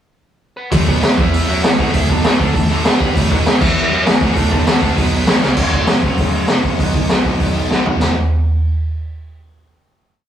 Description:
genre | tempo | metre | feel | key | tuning
punk rock | 197 BPM | 4/4 | straight | A major | A4 = 440 Hz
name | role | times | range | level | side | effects
biting lead guitar | melody | 0.6-5.4 s | B3 to B5 | -26 LUFS | left 1 dB | overdrive
distorted electric guitar | riff | 0.7-8.1 s | F#2 to G4 | -23 LUFS | right 5 dB | distortion
heavy high-gain guitar | riff | 0.7-5.6 s | A2 to G4 | -24 LUFS | right 2 dB | distortion
sludgy distorted guitar | riff | 0.7-8.1 s | F#2 to G4 | -23 LUFS | left 6 dB | overdrive
fuzz picked electric bass | bass | 0.7-8.2 s | F#1 to G2 | -22 LUFS | right 1 dB | overdrive
raw garage drum kit | drums | 0.7-8.1 s | crash cymbal, hi-hat, kick drum, snare drum, splash cymbal, toms | -14 LUFS | equal | none
room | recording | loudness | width
little or no reverb | rough rehearsal-room recording, warm saturation, studio ambience | -12 LUFS | side -10 dB against mid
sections
0.0-0.7 pickup bar; 0.7-5.6 riff; 5.6-8.0 outro; 8.0-9.2 final chord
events
drum fill 5.4, 7.7-8.0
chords
0.0 N.C.; 0.7 A; 1.2 E5; 1.5 A; 2.9 G5; 3.2 A; 3.6 E5; 3.9 A; 5.0 B5; 5.3 A; 5.6 F#m; 6.8 B; 8.0 A5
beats
0.10 0.41 | 0.72 1.02 1.33 1.63 | 1.94 2.24 2.55 2.85 | 3.15 3.46 3.76 4.06 | 4.37 4.67 4.97 5.27 | 5.58 5.88 6.18 6.49 | 6.79 7.09 7.40 7.70 | 8.01

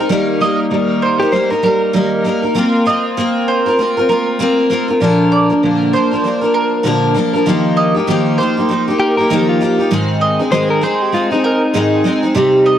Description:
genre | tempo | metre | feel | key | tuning
acoustic pop | 98 BPM | 4/4 | swing 60% on 16ths | Eb major | A4 = 438 Hz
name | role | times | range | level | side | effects
picked steel-string acoustic guitar | accompaniment | 0.0-12.8 s | Ab2 to Bb4 | -13 LUFS | equal | double-tracked left and right
mandolin | arpeggios | 0.4-12.8 s | Bb4 to Eb5 | -20 LUFS | right 4 dB | none
direct-recorded clean electric guitar | second line | 1.2-2.4, 9.0-12.2 s | Eb4 to C5 | -18 LUFS | left 2 dB | none
room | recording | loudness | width
light reverb | worn, warbling old tape, cassette tape, warbly pitch drift | -12 LUFS | side -10 dB against mid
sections
0.0-5.0 A section; 5.0-12.8 B section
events
none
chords
0.1 Eb; 2.6 Bbsus2; 5.0 Bb; 7.5 Ebadd9; 9.9 Ab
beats
| 0.10 0.72 1.33 1.94 | 2.56 3.17 3.78 4.40 | 5.01 5.62 6.23 6.85 | 7.46 8.07 8.68 9.30 | 9.91 10.52 11.13 11.74 | 12.36

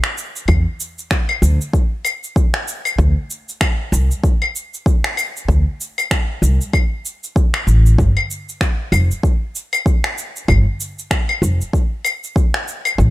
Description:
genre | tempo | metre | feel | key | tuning
organic downtempo | 96 BPM | 4/4 | swing 58% on 16ths | unclear | A4 = 441 Hz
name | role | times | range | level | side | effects
electronic finger snaps, cabasa and claves | drums | 0.0-13.1 s | none | -21 LUFS | left 1 dB | none
upright bass | bass | 0.5-13.1 s | F1 to E2 | -14 LUFS | equal | sidechain pumping
electronic kick drum | drums | 0.5-13.1 s | none | -16 LUFS | equal | none
room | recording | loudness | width
little or no reverb | none | -15 LUFS | side -17 dB against mid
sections
0.0-13.1 A section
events
none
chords
none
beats
| 0.48 1.11 1.73 2.36 | 2.98 3.61 4.23 4.86 | 5.48 6.11 6.73 7.36 | 7.98 8.61 9.23 9.86 | 10.48 11.11 11.73 12.36 | 12.98

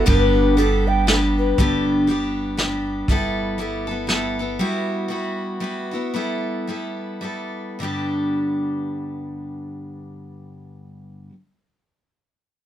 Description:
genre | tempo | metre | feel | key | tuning
acoustic folk duo or small band | 103-120 BPM | 3/4 | swing 59% on 8ths | G major | A4 = 438 Hz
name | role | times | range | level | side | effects
breathy alto ocarina | second line | 0.0-1.6 s | A4 to G5 | -21 LUFS | equal | none
picked steel-string acoustic guitar | accompaniment | 0.0-11.3 s | G2 to A4 | -22 LUFS | equal | none
upright bass | bass | 0.0-4.6 s | G1 | -25 LUFS | equal | none
vintage brush drum kit | drums | 0.1-4.2 s | hi-hat, kick drum, snare drum | -20 LUFS | equal | none
room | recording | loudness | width
little or no reverb | close, detailed microphones | -20 LUFS | side -11 dB against mid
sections
0.0-1.6 A section; 1.6-7.8 B section; 7.8-11.3 C section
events
slowing down 4.6-7.8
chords
0.1 G; 3.1 Asus2/G; 4.6 Emadd9/G; 6.1 Asus2/G; 7.8 G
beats
| 0.08 0.58 1.08 | 1.58 2.09 2.59 | 3.09 3.59 4.10 | 4.60 5.11 5.62 | 6.14 6.67 7.22 | 7.79 8.38 8.96 | 9.54 10.12 10.71

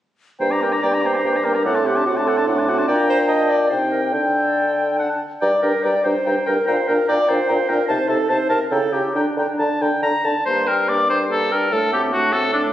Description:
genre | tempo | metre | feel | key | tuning
quick classical-period movement for wind quintet | 134-152 BPM | 3/4 | rubato | G minor | A4 = 441 Hz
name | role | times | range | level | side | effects
mellow silver concert flute | melody | 0.4-12.7 s | F#5 to D6 | -28 LUFS | left 2 dB | none
warm oboe | second line | 0.4-12.6 s | D4 to Bb5 | -22 LUFS | left 1 dB | none
mellow French horn | accompaniment | 0.4-12.7 s | A3 to E4 | -27 LUFS | left 1 dB | none
mellow clarinet | accompaniment | 0.4-12.7 s | D4 to Eb5 | -22 LUFS | right 2 dB | none
dark bassoon | bass | 0.4-12.7 s | G2 to D3 | -22 LUFS | equal | none
room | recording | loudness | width
moderate recital hall reverb, RT60 1.7 s | recorded on a phone in the room, studio reverb | -16 LUFS | side -12 dB against mid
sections
0.4-10.5 A section; 10.5-12.7 A section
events
none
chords
0.4 Gm; 1.6 D7/A; 2.9 Gm/Bb; 3.7 Cm; 4.1 Dsus4; 5.4 Gm; 6.7 Gm/Bb; 7.9 Adim/C; 8.7 C#dim; 9.2 Gm/D; 10.5 Gm; 11.7 D7/A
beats
| 0.40 0.83 1.24 | 1.65 2.06 2.47 | 2.88 3.29 3.70 | 4.13 4.56 4.99 | 5.42 5.84 6.26 | 6.68 7.09 7.49 | 7.89 8.29 8.71 | 9.15 9.59 10.03 | 10.46 10.89 11.30 | 11.71 12.12 12.53

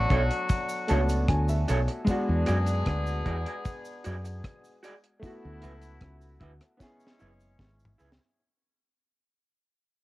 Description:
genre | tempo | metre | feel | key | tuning
lovers rock reggae | 76 BPM | 4/4 | straight | B dorian | A4 = 440 Hz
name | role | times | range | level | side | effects
electric guitar at the edge of break-up | melody | 0.0-1.6 s | none | barely audible | none | none
clear horn section | second line | 0.0-8.0 s | E3 to G#4 | -34 LUFS | left 2 dB | analog delay
clear concert grand piano | accompaniment | 0.0-8.4 s | G#3 to A5 | -32 LUFS | equal | none
fingered electric bass | bass | 0.0-8.2 s | F#1 to F#2 | -27 LUFS | equal | none
electric guitar through a small old amp | stabs | 0.1-8.2 s | D4 to D5 | -34 LUFS | right 3 dB | none
deep reggae drum kit | drums | 0.1-8.3 s | hi-hat, kick drum, rim click, snare drum, toms | -28 LUFS | equal | none
cabasa | percussion | 0.5-8.2 s | none | -50 LUFS | right 4 dB | none
room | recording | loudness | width
small room reverb | home recording on cassette | -25 LUFS | side -18 dB against mid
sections
0.0-8.4 A section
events
fade-out 0.0-8.4; grand piano fill 0.5-2.1; drum fill 6.8-8.4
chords
0.0 Bm9; 2.1 E9 (rootless); 5.2 D69; 6.8 F#9sus4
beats
0.50 1.29 | 2.08 2.86 3.65 4.44 | 5.23 6.02 6.80 7.59

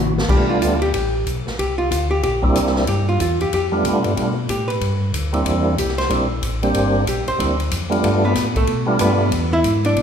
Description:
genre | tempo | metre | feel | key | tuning
soul jazz organ trio | 186 BPM | 4/4 | swing 63% on 8ths | G mixolydian | A4 = 441 Hz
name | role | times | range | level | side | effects
percussive tonewheel organ | melody | 0.0-9.3 s | G3 to G4 | -20 LUFS | right 1 dB | slow rotary speaker, overdrive, chorus vibrato
mellow tonewheel organ | bass | 0.0-10.0 s | G1 to C3 | -22 LUFS | equal | chorus vibrato, stopped rotary speaker
swinging big-band drum kit | drums | 0.2-10.0 s | crash cymbal, hi-hat, kick drum, ride cymbal, snare drum | -25 LUFS | left 1 dB | none
archtop guitar, miked and amplified | accompaniment | 0.3-10.0 s | A3 to E5 | -22 LUFS | equal | none
room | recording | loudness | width
wet recital hall reverb, RT60 1.3 s | recorded in a church or concert hall | -16 LUFS | side -8 dB against mid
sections
0.3-10.0 A section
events
drum fill 0.0; hollow-body jazz guitar solo 0.3-10.0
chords
0.3 G9; 1.6 C9; 2.9 G9; 5.5 C9; 8.0 G9; 9.3 E7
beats
| 0.29 0.61 0.94 1.26 | 1.58 1.91 2.23 2.55 | 2.87 3.19 3.52 3.84 | 4.16 4.49 4.81 5.13 | 5.46 5.78 6.10 6.42 | 6.75 7.07 7.39 7.72 | 8.04 8.36 8.69 9.01 | 9.33 9.65 9.98

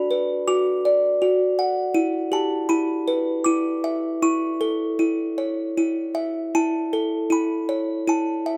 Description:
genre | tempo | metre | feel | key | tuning
children's music, lullaby | 79 BPM | 3/4 | rubato | unclear | A4 = 439 Hz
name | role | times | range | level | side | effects
music box | solo | 0.0-8.6 s | E4 to D6 | -23 LUFS | equal | none
room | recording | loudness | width
wet recital hall reverb, RT60 1.4 s | none | -23 LUFS | mono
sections
0.0-8.6 A section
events
none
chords
0.0 Bm; 2.0 Em; 4.2 A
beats
0.47 1.22 | 1.96 2.70 3.46 | 4.22 4.99 5.78 | 6.55 7.32 8.09

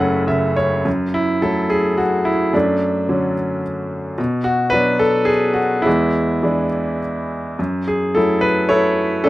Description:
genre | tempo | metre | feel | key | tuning
classical, lyrical solo piano | 107 BPM | 3/4 | rubato | F# minor | A4 = 440 Hz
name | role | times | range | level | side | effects
bright grand piano | solo | 0.0-9.3 s | F#1 to F#5 | -16 LUFS | equal | none
room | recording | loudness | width
little or no reverb | close, detailed microphones | -16 LUFS | side -16 dB against mid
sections
0.9-9.3 A section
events
grand piano fill 0.0-0.9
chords
0.0 F#m7; 2.5 Dmaj7/F#; 4.2 Bm; 5.9 E7; 7.6 F#m7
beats
0.28 | 0.86 1.43 1.99 | 2.54 3.10 3.64 | 4.19 4.74 5.30 | 5.87 6.43 7.01 | 7.59 8.16 8.72 | 9.28

